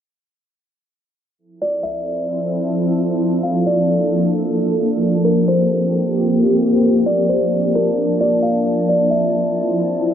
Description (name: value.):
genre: hip hop.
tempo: 132 BPM.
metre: 4/4.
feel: half-time.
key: F major.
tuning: A4 = 440 Hz.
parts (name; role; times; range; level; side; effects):
shimmering ambient pad; sustained chords; 2.1-10.1 s; F3 to A5; -17 LUFS; equal; chorus, built-in reverb, cassette tape.
buzzing kalimba; melody; 1.6-10.0 s; Bb4 to F5; -20 LUFS; equal; cassette tape, analog delay.
room: moderate spring reverb, RT60 1.6 s, small room ambience.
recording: home recording on cassette, low-pass filter.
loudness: -15 LUFS.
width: side -9 dB against mid.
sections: 1.4-10.1 A section.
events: none.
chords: 1.4 Fmaj7; 3.2 Bbmaj7; 5.0 C7sus4; 6.8 Bbmaj7; 8.7 Fmaj7.